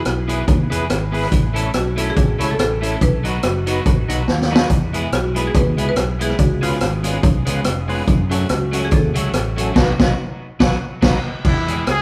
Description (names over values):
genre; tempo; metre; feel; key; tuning
ska; 142 BPM; 4/4; swing 56% on 8ths; E major; A4 = 440 Hz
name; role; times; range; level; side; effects
marimba with hard mallets; melody; 0.0-11.0 s; E4 to B4; -28 LUFS; equal; none
electric guitar at the edge of break-up; accompaniment; 0.0-11.8 s; F#3 to B4; -29 LUFS; equal; dub echo
percussive tonewheel organ; stabs; 0.1-11.2 s; C#4 to C#5; -30 LUFS; equal; overdrive, chorus vibrato, slow rotary speaker
fingered electric bass; bass; 0.1-12.0 s; E#1 to F#2; -25 LUFS; equal; none
street-band drum kit; drums; 0.1-12.0 s; crash cymbal, hi-hat, kick drum, rim click, snare drum; -20 LUFS; equal; none
bright trumpet; melody; 11.5-12.0 s; E4 to G#4; -23 LUFS; equal; none
room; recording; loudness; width
moderate large studio reverb, RT60 1.1 s; band playing live in one room; -18 LUFS; mono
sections
0.0-11.4 A section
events
drum fill 4.3-4.7; band accent 9.8-11.4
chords
0.0 E; 1.3 A; 3.0 B; 4.7 E; 6.4 C#7; 8.1 F#m; 9.8 B; 11.4 E